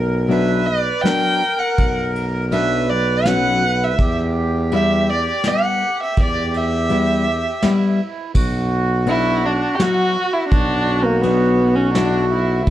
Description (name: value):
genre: klezmer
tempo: 82 BPM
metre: 3/4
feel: straight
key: unclear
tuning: A4 = 440 Hz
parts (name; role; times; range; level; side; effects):
- accordion; second line; 0.0-12.6 s; E4 to B4; -23 LUFS; right 3 dB; none
- clear tuba; bass; 0.0-12.7 s; B1 to E2; -20 LUFS; equal; none
- dark violin; melody; 0.3-12.7 s; A#3 to G5; -20 LUFS; equal; none
- nylon-string guitar; accompaniment; 0.3-12.3 s; F#3 to E4; -20 LUFS; left 4 dB; none
- vintage brush drum kit; drums; 0.3-12.7 s; crash cymbal, kick drum, ride cymbal, snare drum; -21 LUFS; equal; none
room: moderate small room ambience, RT60 0.5 s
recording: dark, warm production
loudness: -15 LUFS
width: side -13 dB against mid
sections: 0.0-8.4 A section; 8.4-12.7 A section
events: speeding up 0.0-12.7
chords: 0.0 Bm; 4.0 Em; 8.4 Bm